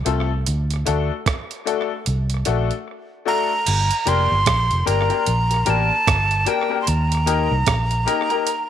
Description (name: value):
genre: roots reggae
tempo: 75 BPM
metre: 4/4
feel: swing 59% on 16ths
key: G minor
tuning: A4 = 440 Hz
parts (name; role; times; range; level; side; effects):
- vintage muted fingered electric bass; bass; 0.0-8.0 s; F1 to Eb2; -21 LUFS; right 1 dB; none
- bright upright piano; stabs; 0.1-8.5 s; A3 to Bb4; -24 LUFS; left 11 dB; none
- breakbeat sampler-style drum kit; drums; 0.1-8.7 s; crash cymbal, hi-hat, kick drum, rim click; -24 LUFS; right 5 dB; tape echo
- breathy bright jazz flute; melody; 3.3-8.7 s; G5 to C6; -20 LUFS; right 2 dB; tape echo
room: light reverb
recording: 1960s-style stereo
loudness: -17 LUFS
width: side -10 dB against mid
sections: 0.0-3.7 A section; 3.7-8.7 B section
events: none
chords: 0.5 D; 3.7 Gm; 6.9 Eb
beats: | 0.46 1.26 2.06 2.86 | 3.66 4.46 5.26 6.06 | 6.86 7.66 8.46